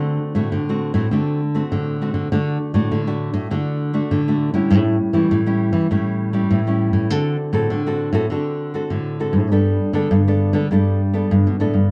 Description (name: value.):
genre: samba and choro.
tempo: 100 BPM.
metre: 4/4.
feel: straight.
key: G major.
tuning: A4 = 440 Hz.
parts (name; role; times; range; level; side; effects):
nylon-string guitar; accompaniment; 0.0-11.9 s; A2 to A4; -23 LUFS; equal; none.
nylon-string guitar; bass; 0.0-11.9 s; G2 to E3; -22 LUFS; equal; none.
room: light reverb.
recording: dark, warm production.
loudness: -19 LUFS.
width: mono.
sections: 0.0-11.9 A section.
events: none.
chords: 0.0 D7; 2.3 D; 4.7 A7; 7.1 D7; 9.5 Gadd9.